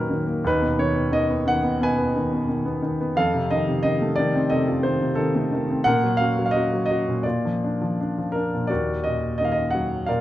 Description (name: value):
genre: classical, lyrical solo piano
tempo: 88 BPM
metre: 4/4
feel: rubato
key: unclear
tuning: A4 = 440 Hz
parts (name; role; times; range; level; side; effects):
- warm baby grand piano; solo; 0.0-10.2 s; Eb2 to Ab5; -20 LUFS; equal; none
room: moderate recital hall reverb, RT60 1.4 s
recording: dark, warm production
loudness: -20 LUFS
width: side -14 dB against mid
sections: 0.0-8.7 A section; 8.7-10.2 B section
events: none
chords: 0.4 Abm/Eb; 3.2 F7; 5.9 Ebmadd9/Bb; 7.2 Bb; 8.7 Ebm